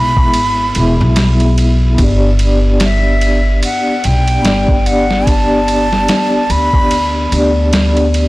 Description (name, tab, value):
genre	trip hop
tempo	73 BPM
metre	4/4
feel	swing 58% on 16ths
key	unclear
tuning	A4 = 440 Hz
part	breathy jazz flute	melody	0.0-7.3 s	E5 to B5	-17 LUFS	right 1 dB	tape echo
part	vibraphone with soft mallets	accompaniment	0.0-8.3 s	B3 to E5	-16 LUFS	left 1 dB	tremolo, tape echo
part	upright bass	bass	0.0-8.3 s	E1 to D2	-14 LUFS	equal	tube saturation
part	boom bap sampler-style drum kit	drums	0.2-8.3 s	kick drum, ride cymbal, snare drum	-17 LUFS	equal	studio reverb
room	small room ambience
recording	blown-out, overdriven recording, overdrive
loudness	-10 LUFS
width	side -19 dB against mid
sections	0.0-8.3 A section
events	none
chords	0.0 E; 2.0 G